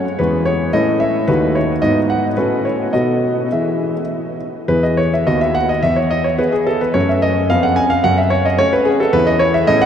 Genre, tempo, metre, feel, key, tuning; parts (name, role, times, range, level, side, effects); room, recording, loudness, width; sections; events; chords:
classical-period piano sonatina; 102-112 BPM; 2/4; rubato; E major; A4 = 440 Hz
clear concert grand piano; solo; 0.0-9.9 s; D#2 to G#5; -14 LUFS; equal
wet huge ambient reverb, RT60 7.8 s; in a vast, echoing space; -14 LUFS; side -8 dB against mid
0.0-4.7 A section; 4.7-9.9 B section
0.2 E; 0.7 A; 1.3 D#m7b5; 1.8 G#m; 2.4 F#m/A; 2.9 B7; 3.5 E; 5.3 B/D#; 5.8 E; 6.9 F#m; 7.5 C#7/E#; 8.0 F#m; 9.1 E5